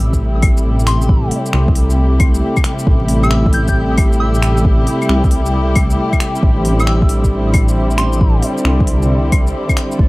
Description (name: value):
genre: future garage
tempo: 135 BPM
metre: 4/4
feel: swing 67% on 16ths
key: A minor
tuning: A4 = 442 Hz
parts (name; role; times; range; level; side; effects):
- warm chamber string section; sustained chords; 0.0-10.1 s; C3 to A4; -18 LUFS; equal; sidechain pumping
- dark detuned saw bass; bass; 0.0-10.1 s; A1 to C2; -15 LUFS; equal; sidechain pumping
- deep house drum kit; drums; 0.1-10.0 s; claves, finger snaps, hi-hat, shaker; -23 LUFS; left 2 dB; studio ambience
- electronic kick drum; drums; 0.1-10.1 s; none; -14 LUFS; equal; studio ambience
- soft synth bell; melody; 0.9-8.4 s; C6 to G6; -26 LUFS; equal; chorus, tape echo
room: digital ambience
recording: dark, warm production, vinyl crackle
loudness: -11 LUFS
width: side -21 dB against mid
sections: 0.0-10.1 A section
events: none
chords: 0.0 Am7; 6.4 Cadd9/A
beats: 0.21 0.65 | 1.09 1.54 1.98 2.43 | 2.87 3.32 3.76 4.21 | 4.65 5.09 5.54 5.98 | 6.43 6.87 7.32 7.76 | 8.21 8.65 9.10 9.54 | 9.98